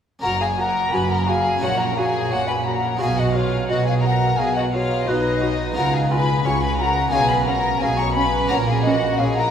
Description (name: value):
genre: classical, baroque-style concerto movement with solo episodes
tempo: 87 BPM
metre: 4/4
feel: straight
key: F# major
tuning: A4 = 440 Hz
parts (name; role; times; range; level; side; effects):
- mellow wooden flute; melody; 0.2-9.4 s; B4 to A#5; -24 LUFS; equal; none
- warm chamber violin section; melody; 0.2-9.5 s; D#5 to C#6; -24 LUFS; left 3 dB; none
- rich chamber violin section; second line; 0.2-9.5 s; D#4 to C#5; -26 LUFS; left 2 dB; none
- dark chamber viola section; accompaniment; 0.2-9.3 s; C#4 to F#4; -28 LUFS; right 1 dB; none
- harpsichord; accompaniment; 0.2-9.5 s; F#2 to F#4; -30 LUFS; right 1 dB; none
- dark chamber cello section; bass; 0.2-9.5 s; F#2 to C#3; -26 LUFS; right 1 dB; none
- rich chamber double bass section; bass; 0.2-9.5 s; F#1 to C#2; -26 LUFS; right 2 dB; none
room: wet cathedral reverb, RT60 4.6 s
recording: recorded in a church or concert hall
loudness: -18 LUFS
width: side -8 dB against mid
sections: 0.2-9.5 A section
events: none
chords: 0.2 F#5; 1.6 F#/A#; 3.0 B; 5.8 C#; 7.1 C#7/B; 8.5 F#/A#